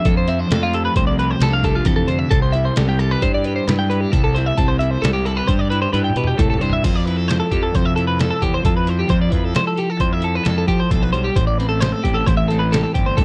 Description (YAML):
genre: math rock and midwest emo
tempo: 133 BPM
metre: 5/4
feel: straight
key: unclear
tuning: A4 = 440 Hz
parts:
  - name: twelve-string electric guitar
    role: accompaniment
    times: 0.0-13.2 s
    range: G2 to C5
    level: -24 LUFS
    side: equal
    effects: none
  - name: twelve-string electric guitar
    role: arpeggios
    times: 0.0-13.2 s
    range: F4 to G5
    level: -24 LUFS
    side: equal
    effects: none
  - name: trip hop sampler-style drum kit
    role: drums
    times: 0.0-13.2 s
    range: crash cymbal, hi-hat, kick drum, snare drum, toms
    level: -22 LUFS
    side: equal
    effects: none
  - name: fuzz fingered electric bass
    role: bass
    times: 0.1-13.2 s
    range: G1 to F3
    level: -24 LUFS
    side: equal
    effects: overdrive
room: little or no reverb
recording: dry, close 1970s-style studio recording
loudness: -18 LUFS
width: mono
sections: 0.0-6.8 A section; 6.8-13.2 B section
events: drum fill 5.9-6.8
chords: 0.0 F69; 2.3 Cmaj7; 6.8 Fmaj7; 11.4 Am7